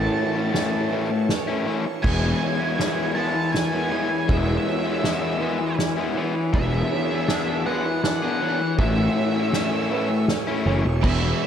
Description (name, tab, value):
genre	post-rock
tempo	80 BPM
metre	3/4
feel	straight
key	E major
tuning	A4 = 437 Hz
part	octave-fuzz lead guitar	melody	0.0-11.5 s	E5 to A5	-30 LUFS	right 2 dB	distortion, tape echo
part	clear studio string section	sustained chords	0.0-11.5 s	G#3 to C#6	-38 LUFS	right 3 dB	none
part	twangy electric guitar	arpeggios	0.0-11.5 s	E2 to D4	-32 LUFS	right 1 dB	wide subtle chorus, tape echo
part	crunchy overdriven guitar	riff	0.0-11.5 s	A2 to G#4	-24 LUFS	left 4 dB	none
part	fuzz picked electric bass	bass	0.0-11.3 s	E1 to A1	-23 LUFS	right 1 dB	overdrive
part	felt-muted upright piano	arpeggios	0.2-11.5 s	B4 to C#5	-36 LUFS	right 8 dB	wide subtle chorus, tape echo
part	soft-mallet drum kit	drums	0.2-11.5 s	crash cymbal, kick drum, ride cymbal, snare drum	-26 LUFS	right 2 dB	none
part	crunchy overdriven guitar	riff	11.0-11.5 s	E3 to G#4	-28 LUFS	right 12 dB	wide subtle chorus
room	moderate lush hall reverb, RT60 2.5 s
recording	dreamy mix soaked in reverb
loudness	-20 LUFS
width	side -9 dB against mid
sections	0.0-11.5 A section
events	none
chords	0.0 A; 2.0 E6; 6.5 E7; 8.8 Amaj7